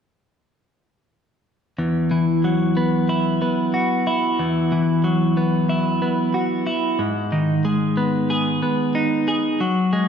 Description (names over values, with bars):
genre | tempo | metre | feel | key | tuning
rock | 92 BPM | 4/4 | straight | E major | A4 = 439 Hz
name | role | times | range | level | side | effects
twelve-string electric guitar | arpeggios | 1.8-10.1 s | E2 to G#4 | -18 LUFS | equal | slapback echo
room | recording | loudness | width
wet concert hall reverb, RT60 1.9 s | big arena sound | -18 LUFS | side -7 dB against mid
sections
1.8-10.1 A section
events
none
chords
1.8 Esus2; 7.0 G#m